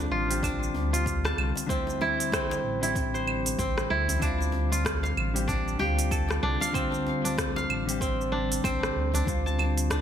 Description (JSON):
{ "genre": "organic downtempo", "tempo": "95 BPM", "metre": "4/4", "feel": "swing 58% on 16ths", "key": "unclear", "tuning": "A4 = 440 Hz", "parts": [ { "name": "mellow electric guitar", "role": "accompaniment", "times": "0.0-10.0 s", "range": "D3 to G4", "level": "-33 LUFS", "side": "left 4 dB", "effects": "sidechain pumping, ping-pong delay" }, { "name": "kora", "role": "arpeggios", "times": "0.0-10.0 s", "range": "C4 to A5", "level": "-29 LUFS", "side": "right 1 dB", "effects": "ping-pong delay" }, { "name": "smooth gliding synth bass", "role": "bass", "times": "0.0-10.0 s", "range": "A1 to D2", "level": "-30 LUFS", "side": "equal", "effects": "sidechain pumping" }, { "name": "afro-pop drum kit", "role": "drums", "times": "0.0-10.0 s", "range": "claves, hi-hat, rim click, shaker", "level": "-32 LUFS", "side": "right 2 dB", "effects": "studio reverb, gated reverb" }, { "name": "electronic kick drum", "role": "drums", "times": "0.4-10.0 s", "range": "none", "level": "-33 LUFS", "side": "equal", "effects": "studio reverb" }, { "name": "djembe", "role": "percussion", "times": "0.4-9.7 s", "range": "none", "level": "-40 LUFS", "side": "left 1 dB", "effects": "none" } ], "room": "light reverb, digital ambience", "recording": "bright 1980s-style digital production", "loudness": "-25 LUFS", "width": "side -9 dB against mid", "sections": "0.0-10.0 A section", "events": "none", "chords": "0.0 F69/A; 1.7 C", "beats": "0.43 1.06 | 1.70 2.33 2.96 3.59 | 4.22 4.85 5.48 6.12 | 6.75 7.38 8.01 8.64 | 9.27 9.90" }